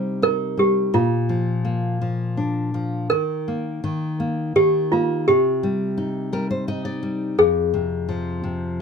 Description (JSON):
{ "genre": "children's music, lullaby", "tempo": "84 BPM", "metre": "3/4", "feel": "rubato", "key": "Eb major", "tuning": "A4 = 440 Hz", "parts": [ { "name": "toy piano", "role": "melody", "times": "0.0-8.8 s", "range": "F4 to C5", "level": "-19 LUFS", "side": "equal", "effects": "none" }, { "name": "nylon-string guitar", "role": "accompaniment", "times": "0.0-8.8 s", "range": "F2 to Eb5", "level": "-23 LUFS", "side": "left 2 dB", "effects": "none" } ], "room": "light reverb", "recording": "close, detailed microphones", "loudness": "-19 LUFS", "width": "side -6 dB against mid", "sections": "0.0-8.8 A section", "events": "nylon-string guitar fill 6.0-7.4", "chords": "0.0 Cm7; 0.9 Bb; 3.1 Eb5; 5.3 Cm; 7.4 Fm", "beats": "0.22 | 0.93 1.65 2.37 | 3.11 3.84 4.57 | 5.29 5.99 6.69 | 7.39 8.09 8.80" }